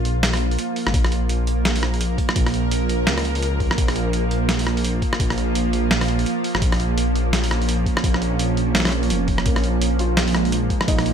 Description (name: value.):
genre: half-time drum and bass.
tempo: 169 BPM.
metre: 4/4.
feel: swing 59% on 16ths, half-time.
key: Bb minor.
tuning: A4 = 442 Hz.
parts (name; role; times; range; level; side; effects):
bowed-like drone; sustained chords; 0.0-11.1 s; F3 to Bb4; -23 LUFS; right 3 dB; built-in reverb, sidechain pumping.
dark detuned saw bass; bass; 0.0-11.1 s; F1 to Db2; -22 LUFS; equal; none.
boom bap sampler-style drum kit; drums; 0.1-11.1 s; hi-hat, rim click, snare drum; -23 LUFS; equal; none.
electronic kick drum; drums; 0.9-11.0 s; none; -22 LUFS; equal; none.
felt-muted upright piano; arpeggios; 9.5-11.1 s; Ab3 to F4; -27 LUFS; left 2 dB; ping-pong delay.
room: little or no reverb.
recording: none.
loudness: -18 LUFS.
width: side -8 dB against mid.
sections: 0.0-11.1 A section.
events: none.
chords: 0.0 Bb5.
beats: 0.23 0.58 | 0.94 1.29 1.65 2.00 | 2.36 2.71 3.07 3.42 | 3.78 4.13 4.49 4.84 | 5.20 5.55 5.91 6.26 | 6.62 6.97 7.33 7.68 | 8.04 8.39 8.75 9.10 | 9.46 9.81 10.17 10.52 | 10.88.